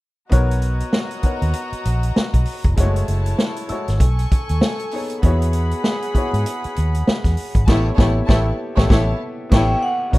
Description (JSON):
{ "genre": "lush 1970s-style soul", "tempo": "98 BPM", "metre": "4/4", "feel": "swing 58% on 16ths", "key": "B major", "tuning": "A4 = 439 Hz", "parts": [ { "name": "warm chamber string section", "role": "second line", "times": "0.3-10.2 s", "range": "D#4 to C#6", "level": "-27 LUFS", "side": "equal", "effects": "none" }, { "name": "warm concert grand piano", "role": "accompaniment", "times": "0.3-10.2 s", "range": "G#3 to E5", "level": "-26 LUFS", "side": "left 2 dB", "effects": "none" }, { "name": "vintage muted fingered electric bass", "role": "bass", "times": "0.3-10.2 s", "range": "E#1 to G#2", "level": "-18 LUFS", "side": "equal", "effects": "none" }, { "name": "vintage drum kit", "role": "drums", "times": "0.3-10.2 s", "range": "crash cymbal, hi-hat, kick drum, snare drum", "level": "-18 LUFS", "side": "equal", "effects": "none" }, { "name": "glockenspiel with rubber mallets", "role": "texture", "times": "0.3-4.3, 9.5-10.2 s", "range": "C#6 to F#6", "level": "-39 LUFS", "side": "left 1 dB", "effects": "none" }, { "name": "vibraphone with medium hard mallets", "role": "melody", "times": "9.5-10.2 s", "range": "D#5 to G5", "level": "-20 LUFS", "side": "equal", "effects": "none" } ], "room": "small room ambience", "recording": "rough home demo mix", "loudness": "-16 LUFS", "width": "side -19 dB against mid", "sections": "0.3-10.1 A section", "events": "band accent 7.7-10.1", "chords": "0.3 Bmaj9; 2.8 F#m9; 4.0 B13; 5.2 E69; 7.7 A9" }